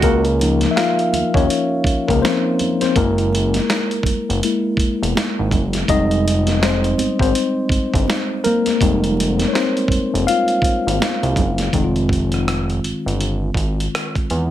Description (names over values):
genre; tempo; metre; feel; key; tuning
R&B, neo-soul; 82 BPM; 4/4; swing 60% on 16ths; F minor; A4 = 440 Hz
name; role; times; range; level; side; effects
mellow tine electric piano; accompaniment; 0.0-14.5 s; Eb3 to F5; -18 LUFS; left 2 dB; auto-pan
fat analog bass; bass; 0.0-14.5 s; Fb1 to E2; -20 LUFS; right 1 dB; none
dusty soul sampler-style drum kit; drums; 0.0-14.5 s; hi-hat, kick drum, rim click, snare drum; -21 LUFS; right 1 dB; none
congas; percussion; 0.4-11.7 s; none; -29 LUFS; right 13 dB; none
room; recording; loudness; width
light reverb; none; -16 LUFS; side -12 dB against mid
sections
0.0-11.7 A section; 11.7-14.5 B section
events
tine electric piano solo 0.0-11.7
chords
0.0 Db6; 3.0 Gb9; 5.9 Fm9; 11.7 Fm7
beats
| 0.03 0.76 1.49 2.22 | 2.96 3.69 4.42 5.15 | 5.88 6.61 7.35 8.08 | 8.81 9.54 10.27 11.00 | 11.74 12.47 13.20 13.93